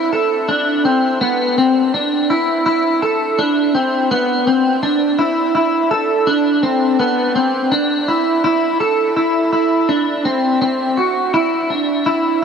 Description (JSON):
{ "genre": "dream pop", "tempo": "83 BPM", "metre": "4/4", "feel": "straight", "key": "unclear", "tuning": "A4 = 440 Hz", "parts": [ { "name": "clean electric guitar", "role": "solo", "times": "0.0-12.4 s", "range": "B3 to A4", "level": "-14 LUFS", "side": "equal", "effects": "analog chorus, digital delay" } ], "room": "wet shimmer reverb, RT60 6.2 s", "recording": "none", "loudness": "-14 LUFS", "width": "side -6 dB against mid", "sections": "0.0-9.2 A section; 9.2-12.4 B section", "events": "none", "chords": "none" }